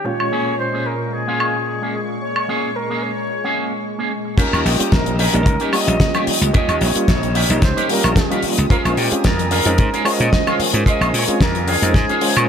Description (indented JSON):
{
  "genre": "nu-disco, nu disco",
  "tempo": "111 BPM",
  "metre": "4/4",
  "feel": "swing 54% on 16ths",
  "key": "Eb mixolydian",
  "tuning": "A4 = 444 Hz",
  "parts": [
    { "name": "silver concert flute", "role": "melody", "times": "0.0-12.5 s", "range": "G4 to Eb5", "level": "-24 LUFS", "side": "equal", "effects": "ping-pong delay" },
    { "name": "overdriven reed electric piano", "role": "accompaniment", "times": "0.0-12.5 s", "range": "Bb2 to Db5", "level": "-23 LUFS", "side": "right 1 dB", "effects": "fast tremolo, sidechain pumping" },
    { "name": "electric guitar with an envelope filter", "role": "riff", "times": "0.0-12.4 s", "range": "Bb3 to Bb4", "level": "-25 LUFS", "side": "right 2 dB", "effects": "wide subtle chorus, low-pass filter" },
    { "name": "lush unison pad", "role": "sustained chords", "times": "0.1-12.5 s", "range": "Bb2 to Eb6", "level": "-28 LUFS", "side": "equal", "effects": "chorus, sidechain pumping" },
    { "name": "damped 70s drum kit", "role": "drums", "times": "0.2-12.5 s", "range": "crash cymbal, hi-hat, snare drum, woodblock", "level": "-20 LUFS", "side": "left 2 dB", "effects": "low-pass filter on hats, low-pass filter on cymbals, low-pass filter on snare, low-pass filter on perc, low-pass filter on room, gated reverb" },
    { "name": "slap bass", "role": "bass", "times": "4.4-12.5 s", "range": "Bb1 to Bb2", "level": "-19 LUFS", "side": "equal", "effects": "none" },
    { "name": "kick drum", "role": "drums", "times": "4.4-12.1 s", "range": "none", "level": "-16 LUFS", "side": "equal", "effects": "none" }
  ],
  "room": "light reverb, small room reverb",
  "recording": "bright 1980s-style digital production",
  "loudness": "-15 LUFS",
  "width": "side -8 dB against mid",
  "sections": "0.0-4.4 A section; 4.4-12.5 B section",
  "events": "filter sweep on drum 0.0-4.4; filter sweep on clean electric guitar 0.0-4.4; drop 4.4-12.5",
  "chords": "0.1 Bbm7; 4.4 Eb7; 8.7 Bbm7"
}